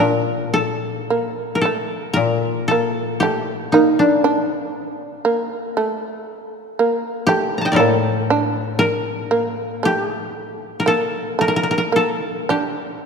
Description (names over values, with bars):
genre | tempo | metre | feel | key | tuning
japanese traditional | 58 BPM | 4/4 | uneven beats, rubato | unclear | A4 = 439 Hz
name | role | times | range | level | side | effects
koto | melody | 0.0-13.1 s | D4 to Bb5 | -20 LUFS | left 1 dB | none
shamisen | second line | 0.0-13.1 s | A3 to D4 | -21 LUFS | right 3 dB | none
koto | accompaniment | 0.0-10.9 s | A2 to Bb2 | -24 LUFS | left 5 dB | none
room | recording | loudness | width
wet church reverb, RT60 3.0 s | dark, warm production | -17 LUFS | side -5 dB against mid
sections
0.0-13.1 A section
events
none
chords
none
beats
| 0.00 1.10 2.17 3.22 | 4.24 5.24 6.25 7.25 | 8.26 9.29 10.34 11.39 | 12.48